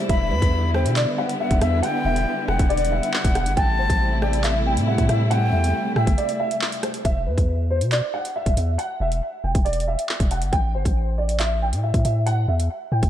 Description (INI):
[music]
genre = hip hop, drill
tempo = 138 BPM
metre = 4/4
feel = half-time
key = unclear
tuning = A4 = 442 Hz
[part]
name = dark concert grand piano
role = melody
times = 0.0-13.1 s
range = B4 to G5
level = -26 LUFS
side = equal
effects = ensemble chorus, analog delay
[part]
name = warm symphonic string section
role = sustained chords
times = 0.0-7.0 s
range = C3 to E4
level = -27 LUFS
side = equal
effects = none
[part]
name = breathy reedy jazz flute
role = second line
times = 0.1-6.6 s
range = E5 to B5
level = -28 LUFS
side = left 4 dB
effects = analog delay
[part]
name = long sustained 808-style bass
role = bass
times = 0.1-13.1 s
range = E1 to B2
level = -22 LUFS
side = equal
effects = none
[part]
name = drill drum kit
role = drums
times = 0.1-13.1 s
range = handclaps, hi-hat, kick drum, rim click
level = -24 LUFS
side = equal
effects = vintage 12-bit sampler grit
[sound]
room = light reverb, studio reverb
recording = none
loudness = -19 LUFS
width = side -11 dB against mid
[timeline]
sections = 0.0-7.0 A section; 7.0-13.1 B section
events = break 6.2-7.0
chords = 0.1 Em7; 3.6 Am7; 7.0 N.C.; 10.5 A5